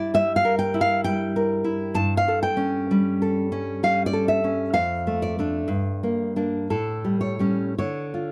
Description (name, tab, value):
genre	romantic piece for solo classical guitar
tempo	54-67 BPM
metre	3/4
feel	rubato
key	unclear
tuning	A4 = 439 Hz
part	nylon-string guitar	solo	0.0-8.3 s	F2 to A5	-24 LUFS	equal	none
room	light reverb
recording	dry, close 1970s-style studio recording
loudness	-24 LUFS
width	mono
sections	0.0-8.3 A section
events	none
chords	0.0 Edim/G; 2.0 A7/G; 4.7 Dm/F; 5.7 Gm; 6.7 A7; 7.8 Dm